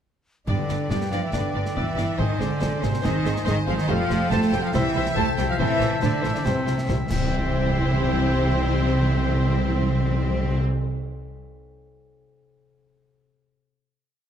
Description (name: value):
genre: cinematic, heroic adventure film score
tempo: 140 BPM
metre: 4/4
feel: straight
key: C major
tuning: A4 = 440 Hz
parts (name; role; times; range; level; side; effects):
- warm symphonic violin section; melody; 0.5-10.6 s; C5 to D5; -34 LUFS; left 2 dB; none
- bright oboe; second line; 0.5-10.6 s; C5 to E5; -36 LUFS; equal; none
- concert flute; second line; 0.5-10.6 s; G5 to A5; -35 LUFS; left 2 dB; none
- rich studio violin section; second line; 0.5-10.6 s; C5 to A5; -37 LUFS; left 2 dB; none
- warm clarinet; second line; 0.5-10.6 s; A4 to C5; -36 LUFS; left 2 dB; none
- warm symphonic viola section; accompaniment; 0.5-10.6 s; G3 to Ab4; -33 LUFS; right 1 dB; none
- bright trombone section; sustained chords; 0.5-10.6 s; Eb3 to C4; -36 LUFS; right 3 dB; none
- dark French horn section; sustained chords; 0.5-10.6 s; C4 to A4; -34 LUFS; left 6 dB; none
- concert harp; arpeggios; 0.5-11.0 s; F2 to E5; -35 LUFS; left 12 dB; none
- mellow trumpet section; stabs; 0.5-10.6 s; C5 to A5; -32 LUFS; right 1 dB; none
- rich symphonic cello section; bass; 0.5-10.6 s; C3 to C4; -28 LUFS; right 2 dB; none
- rich symphonic double bass section; bass; 0.5-10.6 s; F1 to C2; -27 LUFS; right 2 dB; none
- clash cymbals, concert bass drum and concert snare drum; drums; 0.5-7.3 s; none; -30 LUFS; equal; none
- timpani; percussion; 0.5-1.1, 6.5-10.6 s; G2 to C3; -25 LUFS; left 1 dB; none
room: moderate scoring stage reverb, RT60 1.8 s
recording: none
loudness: -20 LUFS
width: side -9 dB against mid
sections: 0.5-7.3 theme; 7.3-10.7 final hit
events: timpani fill 6.5-7.3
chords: 0.5 G; 2.2 Ab; 3.9 Fadd9; 4.7 C; 5.6 Am; 6.5 C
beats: | 0.48 0.91 1.34 1.76 | 2.19 2.62 3.04 3.47 | 3.89 4.31 4.74 5.17 | 5.59 6.02 6.46 6.89 | 7.32 7.75 8.18 8.61 | 9.03 9.46 9.89 10.32